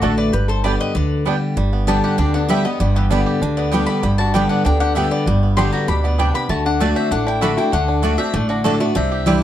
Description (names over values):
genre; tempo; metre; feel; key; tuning
bluegrass; 195 BPM; 4/4; straight; G major; A4 = 440 Hz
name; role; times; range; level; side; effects
bluegrass banjo; melody; 0.0-9.4 s; G3 to G4; -26 LUFS; right 4 dB; none
mandolin; melody; 0.0-9.4 s; F#4 to C6; -24 LUFS; left 3 dB; none
lap resonator guitar; second line; 0.0-9.4 s; D3 to B4; -27 LUFS; left 3 dB; none
picked steel-string acoustic guitar; accompaniment; 0.0-9.4 s; G2 to G4; -19 LUFS; left 1 dB; none
mandolin; stabs; 0.0-9.4 s; A3 to A5; -24 LUFS; right 6 dB; none
upright bass; bass; 0.0-9.4 s; G1 to D2; -20 LUFS; equal; none
room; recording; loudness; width
light reverb; dark, warm production; -15 LUFS; side -11 dB against mid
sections
0.0-1.6 A section; 1.6-9.4 B section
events
none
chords
0.3 G; 6.5 D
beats
0.03 | 0.34 0.64 0.95 1.26 | 1.57 1.88 2.19 2.50 | 2.80 3.11 3.42 3.73 | 4.04 4.34 4.65 4.96 | 5.27 5.58 5.88 6.19 | 6.50 6.81 7.11 7.42 | 7.73 8.04 8.34 8.65 | 8.96 9.27